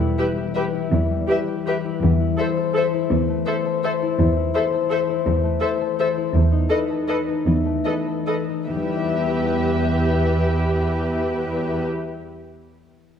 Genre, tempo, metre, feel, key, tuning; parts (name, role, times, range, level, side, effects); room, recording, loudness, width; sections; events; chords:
classical; 140-182 BPM; 3/4; rubato; E minor; A4 = 437 Hz
concert harp; arpeggios; 0.0-12.6 s; E3 to E5; -23 LUFS; left 6 dB
muted symphonic cello section; bass; 0.0-11.8 s; E2; -22 LUFS; right 2 dB
muted symphonic violin section; melody; 0.2-11.8 s; D#5 to E5; -31 LUFS; left 3 dB
muted symphonic violin section; second line; 0.2-11.8 s; B4 to C5; -29 LUFS; left 3 dB
muted symphonic viola section; accompaniment; 0.2-11.8 s; G4 to A4; -27 LUFS; right 1 dB
moderate scoring stage reverb, RT60 2.0 s; dark, warm production; -19 LUFS; side -8 dB against mid
0.0-8.7 A section; 8.7-11.1 B section
slowing down 5.8-8.7
0.0 Em; 2.0 Am/E; 6.3 B7/E; 8.7 Em